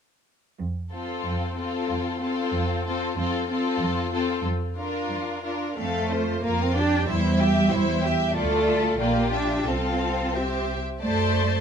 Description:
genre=quick classical-period movement for string orchestra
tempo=92 BPM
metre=2/4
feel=rubato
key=F major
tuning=A4 = 440 Hz
part: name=warm studio cello section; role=bass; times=0.6-11.6 s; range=F2 to D4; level=-26 LUFS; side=right 2 dB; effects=none
part: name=warm studio violin section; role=melody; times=0.9-11.6 s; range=A4 to A5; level=-32 LUFS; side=left 4 dB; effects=none
part: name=warm symphonic violin section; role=second line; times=0.9-11.6 s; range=F4 to E5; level=-30 LUFS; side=left 2 dB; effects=none
part: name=rich chamber viola section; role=accompaniment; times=0.9-11.6 s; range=C4 to C5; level=-29 LUFS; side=left 2 dB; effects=none
part: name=warm studio double bass section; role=bass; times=5.8-11.6 s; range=Bb1 to F#2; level=-27 LUFS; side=right 3 dB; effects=none
room=moderate recital hall reverb, RT60 1.5 s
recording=close, detailed microphones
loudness=-22 LUFS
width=side -7 dB against mid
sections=0.6-5.8 A section; 5.8-11.6 B section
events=none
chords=0.6 F; 4.5 Bb/F; 5.8 F; 6.4 Gm7/F; 7.1 C/E; 8.4 Dm; 9.0 Gm7/Bb; 9.7 F/C; 10.3 C; 11.0 D7/F#

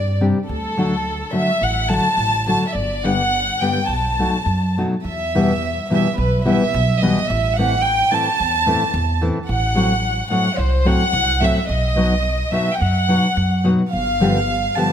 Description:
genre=mexican folk, mariachi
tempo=107 BPM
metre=4/4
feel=straight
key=E harmonic minor from 5.0 s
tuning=A4 = 440 Hz
part: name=warm chamber violin section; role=melody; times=0.0-14.9 s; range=A4 to A5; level=-20 LUFS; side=right 1 dB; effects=none
part: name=upright bass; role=bass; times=0.0-14.7 s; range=G1 to G2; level=-22 LUFS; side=right 1 dB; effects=none
part: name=nylon-string guitar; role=accompaniment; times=0.2-14.9 s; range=E2 to G4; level=-20 LUFS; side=left 2 dB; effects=none
room=moderate scoring stage reverb, RT60 1.4 s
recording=close, detailed microphones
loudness=-16 LUFS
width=side -9 dB against mid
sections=0.0-5.0 A section; 5.0-14.9 B section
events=none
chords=0.5 D; 2.7 G; 3.9 B7; 5.0 Em; 7.3 Am; 9.5 F#dim/A; 11.7 B; 13.9 G7

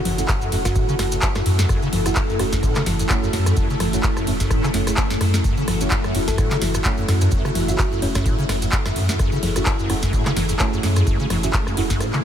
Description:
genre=acid house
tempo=128 BPM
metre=4/4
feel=swing 56% on 16ths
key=F# minor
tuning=A4 = 440 Hz
part: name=string machine, full ensemble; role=sustained chords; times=0.0-12.2 s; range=A3 to A4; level=-26 LUFS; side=equal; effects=phaser, ensemble chorus, sidechain pumping
part: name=deep mellow chord stab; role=stabs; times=0.0-11.8 s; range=A3 to G#4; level=-30 LUFS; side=right 3 dB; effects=chorus, phaser, analog delay
part: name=acid bass, square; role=riff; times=0.1-12.2 s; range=F#2 to A3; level=-25 LUFS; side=equal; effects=ensemble chorus, sidechain pumping, analog delay
part: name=round analog bass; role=bass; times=0.1-12.0 s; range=E1 to F#2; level=-23 LUFS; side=equal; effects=sidechain pumping
part: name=booming analog drum machine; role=drums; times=0.1-12.2 s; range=handclaps, hi-hat, ride cymbal, rim click, snare drum, toms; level=-25 LUFS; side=equal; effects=none
part: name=maracas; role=percussion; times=0.2-12.2 s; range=none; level=-36 LUFS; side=right 2 dB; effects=none
part: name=electronic kick drum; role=drums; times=0.3-12.0 s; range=none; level=-22 LUFS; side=equal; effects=none
part: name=thumb-piano-like synth pluck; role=melody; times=0.7-1.3, 6.3-8.2 s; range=C#4 to A4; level=-34 LUFS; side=equal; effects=none
room=light reverb, digital ambience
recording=none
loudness=-18 LUFS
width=side -9 dB against mid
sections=0.0-12.2 A section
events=none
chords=0.0 F#m7

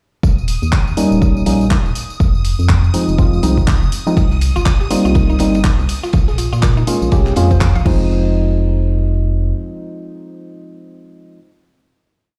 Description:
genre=deep house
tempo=122 BPM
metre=4/4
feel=swing 59% on 16ths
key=F minor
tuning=A4 = 441 Hz
part: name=organ-like FM bass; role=bass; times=0.2-9.5 s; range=Eb1 to Bb2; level=-18 LUFS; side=equal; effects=sidechain pumping
part: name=electronic kick drum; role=drums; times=0.2-8.0 s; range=none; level=-16 LUFS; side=equal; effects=none
part: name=house drum kit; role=drums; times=0.2-8.0 s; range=crash cymbal, handclaps, hi-hat, tambourine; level=-28 LUFS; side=equal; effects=none
part: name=string machine, violins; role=texture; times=0.2-8.1 s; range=Eb6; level=-34 LUFS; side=equal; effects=ensemble chorus
part: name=percussive organ stab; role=stabs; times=1.0-11.4 s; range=F3 to G4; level=-20 LUFS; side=equal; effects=chorus, sidechain pumping, delay
part: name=cloth-damped thuddy drum kit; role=drums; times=4.2-7.9 s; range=ride cymbal, snare drum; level=-39 LUFS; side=equal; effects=high-pass filter on cymbals, high-pass filter on snare, high-pass filter on room
part: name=mallet-like synth pluck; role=arpeggios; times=4.6-8.3 s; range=Eb4 to F5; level=-29 LUFS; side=equal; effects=chorus, sidechain pumping, delay
room=digital ambience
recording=played on a big sound system in a bare room, large studio reverb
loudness=-15 LUFS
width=mono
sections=0.2-8.1 groove; 8.1-12.0 final hit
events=none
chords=0.2 Eb7; 2.2 Fm7; 4.2 Cm7; 6.1 Bbm7; 7.9 Fm7

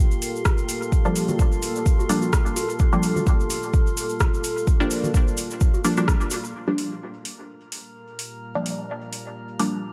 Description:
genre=dub techno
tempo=128 BPM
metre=4/4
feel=swing 55% on 16ths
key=G minor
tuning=A4 = 440 Hz
part: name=deep dark ambient pad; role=sustained chords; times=0.0-9.9 s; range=Bb3 to F5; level=-34 LUFS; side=equal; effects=chorus, built-in reverb, sidechain pumping
part: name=drifting glass-harmonics texture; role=texture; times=0.0-9.9 s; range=F4 to Bb4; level=-37 LUFS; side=equal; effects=chorus, built-in reverb, sidechain pumping
part: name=cabasa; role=percussion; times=0.1-6.5 s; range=none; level=-36 LUFS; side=equal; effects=none
part: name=deep house drum kit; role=drums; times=0.2-9.7 s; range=hi-hat, rim click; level=-32 LUFS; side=equal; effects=small room reverb, dub echo
part: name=electronic kick drum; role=drums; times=0.5-6.2 s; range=none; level=-22 LUFS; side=equal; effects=small room reverb
part: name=filtered dub chord stab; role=stabs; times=1.1-9.8 s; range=F3 to D4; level=-28 LUFS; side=equal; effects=chorus, phaser, vintage 12-bit sampler grit, sidechain pumping, dub echo
part: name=electronic toms and congas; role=percussion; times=1.3-6.4 s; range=none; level=-34 LUFS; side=equal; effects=sidechain pumping on toms, small room reverb, sidechain pumping on perc, dub echo
room=light reverb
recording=none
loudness=-22 LUFS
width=mono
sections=0.0-6.5 A section; 6.5-9.9 B section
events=band accent 6.1; filter sweep on ambient pad 6.5-9.9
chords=0.0 Gm7

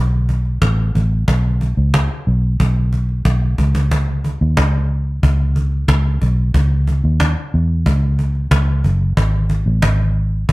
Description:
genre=piano-driven pop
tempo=91 BPM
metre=4/4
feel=straight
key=unclear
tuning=A4 = 441 Hz
part: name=vintage muted fingered electric bass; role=bass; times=0.0-10.5 s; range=F#1 to E2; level=-15 LUFS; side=equal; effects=none
part: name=cajon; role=drums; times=0.3-10.5 s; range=none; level=-21 LUFS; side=equal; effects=none
room=little or no reverb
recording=none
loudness=-14 LUFS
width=side -21 dB against mid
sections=0.0-10.5 A section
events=drum fill 3.3-3.9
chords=none

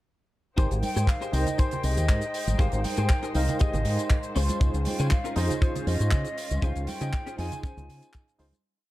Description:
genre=nu-disco, nu disco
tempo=119 BPM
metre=4/4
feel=straight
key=Ab major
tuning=A4 = 441 Hz
part: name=reed electric piano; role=accompaniment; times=0.6-8.5 s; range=Eb4 to G5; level=-34 LUFS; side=right 1 dB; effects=fast tremolo, sidechain pumping, analog delay
part: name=muted studio string section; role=sustained chords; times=0.6-8.6 s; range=Ab3 to G5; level=-38 LUFS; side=left 2 dB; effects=sidechain pumping
part: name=direct-recorded clean electric guitar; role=riff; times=0.6-8.1 s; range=Db4 to Eb5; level=-35 LUFS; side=left 2 dB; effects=ensemble chorus
part: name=fingered electric bass with an envelope filter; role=bass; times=0.6-8.5 s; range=Ab1 to Db3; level=-26 LUFS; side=equal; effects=none
part: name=kick drum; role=drums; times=0.6-8.3 s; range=none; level=-23 LUFS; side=equal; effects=none
part: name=tight funk drum kit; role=drums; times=0.6-8.6 s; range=handclaps, hi-hat, shaker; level=-36 LUFS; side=right 1 dB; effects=none
part: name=tambourine, congas and bongos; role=percussion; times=0.6-8.6 s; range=none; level=-37 LUFS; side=right 3 dB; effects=none
part: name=hollow concert flute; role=melody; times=0.8-8.4 s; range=C5 to Ab5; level=-35 LUFS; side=left 1 dB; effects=analog delay
room=small room ambience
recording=none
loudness=-24 LUFS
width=side -16 dB against mid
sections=0.6-8.6 drop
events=drop 0.6-8.6; fade-out 6.0-8.6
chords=0.6 Abmaj7; 4.4 Dbmaj7

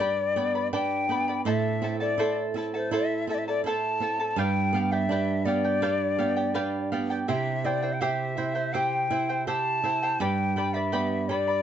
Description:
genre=andean folk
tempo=82 BPM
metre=4/4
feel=straight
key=unclear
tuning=A4 = 437 Hz
part: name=hollow quena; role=melody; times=0.0-11.6 s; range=C5 to A5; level=-28 LUFS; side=left 4 dB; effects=none
part: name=charango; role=accompaniment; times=0.0-11.6 s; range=E4 to B5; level=-31 LUFS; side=right 1 dB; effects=none
part: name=flamenco guitar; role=accompaniment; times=0.0-11.6 s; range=G2 to G4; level=-29 LUFS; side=right 5 dB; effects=none
room=moderate studio reverb, RT60 0.5 s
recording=nothing above 8.0 kHz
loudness=-24 LUFS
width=side -9 dB against mid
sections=0.0-11.6 A section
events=none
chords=0.0 G; 1.5 Am; 4.4 G7; 7.3 C; 10.2 G

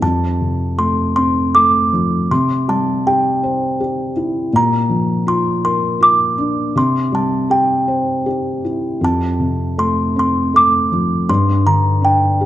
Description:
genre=children's music, lullaby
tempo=80 BPM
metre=3/4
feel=rubato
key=F major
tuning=A4 = 442 Hz
part: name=music box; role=melody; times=0.0-12.5 s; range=G5 to D6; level=-16 LUFS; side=equal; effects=none
part: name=felt-muted upright piano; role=accompaniment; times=0.0-12.5 s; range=F2 to C5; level=-17 LUFS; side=left 1 dB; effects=none
room=moderate recital hall reverb, RT60 1.6 s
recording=dark, warm production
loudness=-14 LUFS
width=side -13 dB against mid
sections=0.0-12.5 A section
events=none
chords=0.0 F; 2.3 C; 4.5 Bb; 6.8 C; 9.0 F; 11.3 Gm

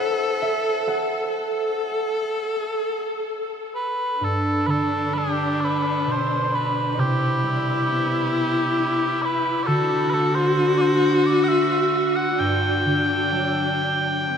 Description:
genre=celtic folk, Celtic slow air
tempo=58-68 BPM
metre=3/4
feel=rubato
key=G major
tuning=A4 = 440 Hz
part: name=rich viola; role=second line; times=0.0-14.4 s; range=D4 to A4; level=-23 LUFS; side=left 2 dB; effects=tape echo
part: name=concert harp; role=accompaniment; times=0.0-14.4 s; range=G2 to F#5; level=-25 LUFS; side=right 1 dB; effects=none
part: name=mellow small bagpipes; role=melody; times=3.8-14.4 s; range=G4 to G5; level=-23 LUFS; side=right 1 dB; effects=none
room=wet huge ambient reverb, RT60 7.4 s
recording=in a vast, echoing space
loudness=-20 LUFS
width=side -7 dB against mid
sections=0.0-4.2 A section; 4.2-14.4 B section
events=harp solo 0.0-4.2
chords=0.0 Am; 1.3 N.C.; 4.2 G; 7.0 Cmaj7; 9.7 D; 12.4 Gmaj7(no3)

